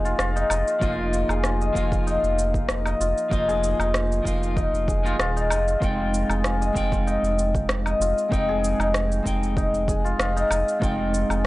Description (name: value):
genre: organic downtempo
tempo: 96 BPM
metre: 4/4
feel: swing 53% on 16ths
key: F minor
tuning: A4 = 442 Hz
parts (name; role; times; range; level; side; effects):
- clean electric guitar; accompaniment; 0.0-11.5 s; F3 to G5; -29 LUFS; right 1 dB; wide subtle chorus, sidechain pumping, analog delay
- santur; arpeggios; 0.0-11.5 s; Eb4 to Eb5; -24 LUFS; left 2 dB; low-pass filter, analog delay
- round analog bass; bass; 0.0-11.5 s; Eb1 to F1; -26 LUFS; equal; sidechain pumping
- electronic shaker, rim click and woodblock; drums; 0.1-11.5 s; none; -29 LUFS; equal; none
- electronic kick drum; drums; 0.8-11.0 s; none; -27 LUFS; equal; none
room: digital ambience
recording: dry, gritty hardware recording, nothing above 10.3 kHz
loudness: -20 LUFS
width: side -18 dB against mid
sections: 0.0-11.5 A section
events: none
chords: 0.0 Ebsus2/F; 5.8 Fm7